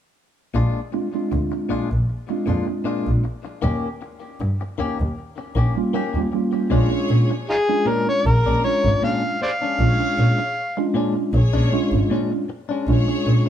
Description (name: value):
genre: blues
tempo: 78 BPM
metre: 4/4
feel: swing 54% on 16ths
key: unclear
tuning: A4 = 440 Hz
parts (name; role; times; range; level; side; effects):
- direct-recorded clean electric guitar; stabs; 0.5-13.5 s; Bb2 to G4; -27 LUFS; left 4 dB; spring reverb, tape echo
- dark double bass; bass; 0.5-13.3 s; Ab1 to Bb2; -20 LUFS; equal; none
- mellow tine electric piano; accompaniment; 0.9-13.5 s; G3 to F4; -23 LUFS; right 3 dB; fast stereo tremolo
- rich studio string section; sustained chords; 6.7-13.5 s; Ab4 to C#5; -31 LUFS; left 4 dB; none
- overdriven harmonica; melody; 7.5-10.9 s; Eb4 to F5; -20 LUFS; left 1 dB; none
room: wet small room reverb, RT60 0.6 s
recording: band playing live in one room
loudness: -18 LUFS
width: side -10 dB against mid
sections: 0.5-6.7 A section; 6.7-13.5 B section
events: none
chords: 0.5 Bb7; 3.6 Eb7; 6.7 Bb7#9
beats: | 0.55 1.32 2.09 2.86 | 3.63 4.40 5.17 5.95 | 6.71 7.49 8.26 9.03 | 9.79 10.56 11.33 12.10 | 12.87